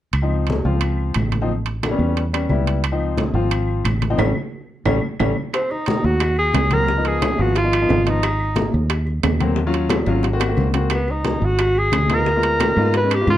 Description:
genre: Afro-Cuban jazz.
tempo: 178 BPM.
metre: 4/4.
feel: straight.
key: unclear.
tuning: A4 = 436 Hz.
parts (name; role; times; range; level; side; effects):
fingered electric bass; bass; 0.1-13.4 s; Ab1 to Ab2; -20 LUFS; right 1 dB; none.
claves; percussion; 0.1-13.3 s; none; -34 LUFS; left 2 dB; none.
congas; percussion; 0.1-13.4 s; none; -26 LUFS; left 1 dB; none.
timbales; percussion; 0.1-13.3 s; none; -26 LUFS; right 9 dB; none.
warm grand piano; accompaniment; 0.2-13.4 s; F3 to Gb4; -23 LUFS; left 3 dB; none.
mellow tenor saxophone; melody; 5.5-8.8, 10.9-13.4 s; Cb4 to B4; -20 LUFS; equal; slapback echo, plate reverb.
bongos; percussion; 5.5-13.4 s; none; -29 LUFS; left 4 dB; none.
room: light reverb.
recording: worn, warbling old tape, cassette tape, warbly pitch drift.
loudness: -17 LUFS.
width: side -12 dB against mid.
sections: 0.1-5.5 A section; 5.5-13.4 B section.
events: band accent 4.2-5.5; drum fill 4.7-5.5, 10.1-10.9.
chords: 0.1 Dbmaj9; 1.5 A9; 2.8 Dbmaj9; 4.2 A7; 5.5 Ab9; 6.9 Db9; 8.2 Ab9; 9.6 Ebm7; 10.2 Ab9; 10.9 Db9; 12.3 Ddim7.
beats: | 0.14 0.48 0.81 1.15 | 1.49 1.83 2.16 2.50 | 2.84 3.17 3.51 3.85 | 4.19 4.53 4.86 5.20 | 5.54 5.87 6.21 6.55 | 6.88 7.22 7.56 7.89 | 8.23 8.57 8.90 9.24 | 9.57 9.91 10.25 10.58 | 10.92 11.26 11.59 11.93 | 12.27 12.60 12.94 13.28.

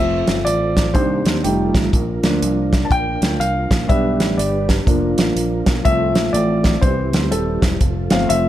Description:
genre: uptempo gospel.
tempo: 122 BPM.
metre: 4/4.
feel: swing 62% on 8ths.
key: F major.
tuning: A4 = 440 Hz.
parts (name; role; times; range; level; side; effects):
warm grand piano; accompaniment; 0.0-8.5 s; Eb3 to A5; -19 LUFS; left 1 dB; none.
dark French horn section; sustained chords; 0.0-8.5 s; Eb3 to G4; -29 LUFS; equal; none.
mellow tonewheel organ; sustained chords; 0.0-8.5 s; Eb3 to C5; -27 LUFS; right 3 dB; slow rotary speaker.
fingered electric bass; bass; 0.0-8.5 s; Eb1 to Eb2; -22 LUFS; equal; none.
natural country drum kit; drums; 0.3-8.4 s; hi-hat, kick drum, snare drum; -19 LUFS; equal; none.
room: light reverb.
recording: none.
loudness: -15 LUFS.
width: side -12 dB against mid.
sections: 0.0-8.5 A section.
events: grand piano solo 0.0-8.5.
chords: 0.0 F; 0.9 Cm7; 1.4 F9; 1.9 Bb; 3.9 G; 4.9 Bb/F; 5.9 F; 6.8 C; 7.8 F.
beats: 0.46 0.95 1.44 | 1.93 2.42 2.91 3.40 | 3.90 4.38 4.88 5.37 | 5.86 6.35 6.83 7.33 | 7.81 8.30.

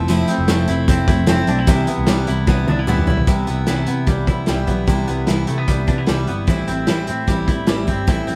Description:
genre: jangly indie pop.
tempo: 150 BPM.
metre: 4/4.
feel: straight.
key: C major.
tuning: A4 = 440 Hz.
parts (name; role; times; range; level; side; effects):
picked steel-string acoustic guitar; accompaniment; 0.0-8.4 s; A2 to E4; -25 LUFS; equal; none.
semi-hollow electric guitar; arpeggios; 0.0-8.4 s; A2 to E4; -25 LUFS; equal; none.
picked electric bass; bass; 0.0-8.4 s; F1 to C3; -24 LUFS; equal; none.
loose indie drum kit; drums; 0.1-8.4 s; hi-hat, kick drum, snare drum, toms; -21 LUFS; equal; none.
room: moderate studio reverb, RT60 0.8 s.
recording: band playing live in one room.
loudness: -18 LUFS.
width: mono.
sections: 0.0-3.3 A section; 3.3-8.4 B section.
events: drum fill 2.5-3.3.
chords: 0.0 Fmaj7; 1.7 Cmaj7; 6.5 Am7.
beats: | 0.09 0.49 0.89 1.28 | 1.68 2.08 2.48 2.88 | 3.28 3.68 4.08 4.48 | 4.88 5.28 5.68 6.08 | 6.48 6.88 7.28 7.68 | 8.08.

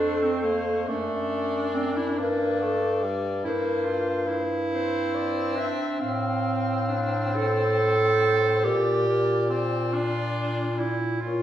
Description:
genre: classical, lyrical piece for single-reed quartet.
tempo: 47 BPM (dotted quarters).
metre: 6/8.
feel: rubato.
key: F major.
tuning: A4 = 439 Hz.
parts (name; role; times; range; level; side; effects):
mellow soprano saxophone; melody; 0.0-11.4 s; C5 to F5; -33 LUFS; left 3 dB; none.
warm clarinet; second line; 0.0-11.4 s; A3 to A4; -26 LUFS; right 3 dB; none.
warm tenor saxophone; accompaniment; 0.0-11.4 s; G3 to D4; -30 LUFS; left 2 dB; none.
clear bass clarinet; bass; 0.0-11.4 s; F2 to Bb2; -28 LUFS; left 1 dB; none.
room: wet stone room reverb, RT60 1.3 s.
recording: heard from further back in the room.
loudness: -23 LUFS.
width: side -11 dB against mid.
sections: 0.0-11.4 A section.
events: none.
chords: 0.0 F; 0.9 D/F#; 2.2 Gm; 3.4 C7/G; 6.0 F/A; 8.7 Bb.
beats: | 0.88 2.19 | 3.45 4.72 | 6.01 7.37 | 8.65 9.93 | 11.23.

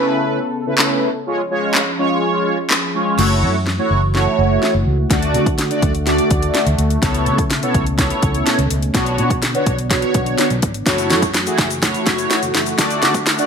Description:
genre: dance-pop.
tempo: 125 BPM.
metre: 4/4.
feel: straight.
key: F# minor.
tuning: A4 = 440 Hz.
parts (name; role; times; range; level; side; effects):
mellow synth brass; accompaniment; 0.0-13.5 s; C#3 to D5; -18 LUFS; equal; chorus, phaser, sidechain pumping.
sweeping resonant pad; sustained chords; 0.0-13.5 s; B2 to A4; -24 LUFS; equal; chorus, sidechain pumping.
house drum kit; drums; 0.8-13.5 s; crash cymbal, handclaps, hi-hat, kick drum, snare drum; -18 LUFS; equal; overdrive, gated reverb.
vintage muted fingered electric bass; bass; 3.2-13.4 s; F#1 to D3; -20 LUFS; equal; sidechain pumping.
tube shaker; percussion; 10.9-13.5 s; none; -30 LUFS; left 12 dB; none.
room: moderate plate reverb, RT60 1.3 s, digital ambience.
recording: bright 1980s-style digital production, high-pass filter.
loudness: -14 LUFS.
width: side -6 dB against mid.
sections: 0.0-3.2 A section; 3.2-13.5 B section.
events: build-up 3.2-13.5; drum fill 3.2-13.5; filter sweep 3.2-13.5.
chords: 0.0 Aadd9/C#; 1.3 C#; 3.2 F#m7; 5.1 D; 7.0 Aadd9/C#; 8.9 Bmadd9; 10.9 F#m7; 12.8 D.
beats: 0.31 0.79 | 1.27 1.75 2.23 2.71 | 3.19 3.67 4.15 4.63 | 5.11 5.59 6.07 6.55 | 7.03 7.51 7.99 8.47 | 8.95 9.43 9.91 10.39 | 10.87 11.35 11.83 12.31 | 12.79 13.27.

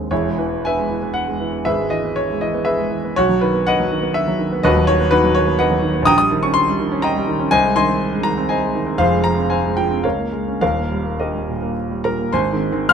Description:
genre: classical, romantic character piece for solo piano.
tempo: 102-128 BPM.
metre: 3/4.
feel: rubato.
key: E major, Ab major from 6.1 s.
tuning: A4 = 439 Hz.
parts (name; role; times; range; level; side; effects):
clear concert grand piano; solo; 0.0-12.9 s; D#1 to F6; -16 LUFS; equal; none.
room: light reverb.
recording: close, detailed microphones.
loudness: -16 LUFS.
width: side -7 dB against mid.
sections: 0.1-12.3 A section.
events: none.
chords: 0.1 E; 1.7 E/G#; 3.2 B; 4.7 B/D#; 6.1 Eb7/Bb; 7.5 Ab/C; 9.0 Fm; 10.0 Bbm7/Db; 10.6 Eb; 12.3 Ab.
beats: | 0.11 0.64 1.14 | 1.66 2.17 2.67 | 3.17 3.67 4.16 | 4.65 5.13 5.60 | 6.07 6.56 7.03 | 7.51 8.00 8.49 | 8.98 9.50 10.04 | 10.62 11.20 11.76 | 12.33 12.89.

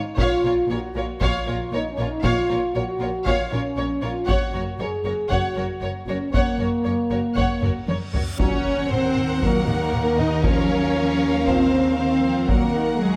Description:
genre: cinematic, epic orchestral film score.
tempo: 117 BPM.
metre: 4/4.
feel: straight.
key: Eb dorian from 8.4 s.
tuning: A4 = 444 Hz.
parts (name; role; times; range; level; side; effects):
warm studio violin section; melody; 0.2-13.2 s; Ab4 to F#5; -34 LUFS; equal; none.
warm symphonic violin section; second line; 0.2-13.2 s; E#4 to Gb5; -33 LUFS; equal; none.
warm symphonic viola section; accompaniment; 0.2-13.2 s; Ab3 to C#5; -32 LUFS; equal; none.
mellow French horn section; sustained chords; 0.2-13.2 s; Ab3 to G#4; -26 LUFS; equal; none.
dark symphonic cello section; bass; 0.2-13.2 s; F#2 to Gb3; -31 LUFS; equal; none.
warm studio double bass section; bass; 0.2-13.2 s; F#1 to Eb2; -32 LUFS; equal; none.
taiko ensemble; drums; 0.2-13.0 s; none; -28 LUFS; equal; none.
reverse cymbal and impact; sound effects; 8.0-10.4 s; none; -37 LUFS; equal; none.
warm trombone section; sustained chords; 8.4-12.7 s; Bb2 to Gb3; -34 LUFS; equal; none.
room: moderate recital hall reverb, RT60 1.4 s.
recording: none.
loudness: -22 LUFS.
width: mono.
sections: 0.0-8.4 A section; 8.4-13.2 B section.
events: drum fill 7.6-8.4; reverse cymbal 8.0-8.4; impact 8.4-10.4.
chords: 0.2 A#m; 4.3 F#; 8.4 Ebm7.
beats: | 0.18 0.70 1.21 1.72 | 2.24 2.75 3.26 3.77 | 4.29 4.80 5.31 5.83 | 6.34 6.85 7.37 7.88 | 8.39 8.90 9.42 9.93 | 10.44 10.95 11.47 11.98 | 12.49 13.01.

